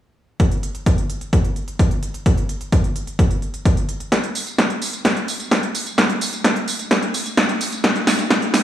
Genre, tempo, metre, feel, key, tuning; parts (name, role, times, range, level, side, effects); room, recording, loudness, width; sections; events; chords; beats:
EDM; 129 BPM; 4/4; straight
big-room dance drum kit; drums; 0.4-8.6 s; hi-hat, snare drum, tambourine; -19 LUFS; equal; overdrive
electronic kick drum; drums; 0.4-8.4 s; -19 LUFS; equal; overdrive, high-pass filter on kick, high-pass filter on room
moderate lush hall reverb, RT60 1.8 s; high-pass filter, small room reverb; -17 LUFS; side -11 dB against mid
0.4-4.1 A section; 4.1-8.6 B section
build-up 4.1-8.6; drum fill 4.1-8.6
| 0.40 0.86 1.33 1.79 | 2.26 2.73 3.19 3.65 | 4.12 4.58 5.05 5.51 | 5.98 6.45 6.91 7.38 | 7.84 8.31